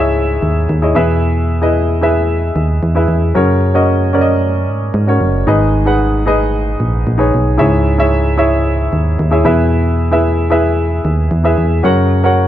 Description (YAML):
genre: piano-driven pop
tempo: 113 BPM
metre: 4/4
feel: straight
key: unclear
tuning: A4 = 439 Hz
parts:
  - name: warm baby grand piano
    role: accompaniment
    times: 0.0-12.5 s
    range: G#2 to F#5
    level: -14 LUFS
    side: left 1 dB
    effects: none
  - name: solid FM bass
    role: bass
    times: 0.0-12.5 s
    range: F#1 to G#2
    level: -14 LUFS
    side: right 1 dB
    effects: none
room: light reverb, studio ambience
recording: dark, warm production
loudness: -11 LUFS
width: side -12 dB against mid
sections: 0.0-12.5 A section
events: none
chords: 0.0 C#m; 1.0 E; 3.3 F#; 5.5 G#m; 7.6 C#m; 9.5 E; 11.8 F#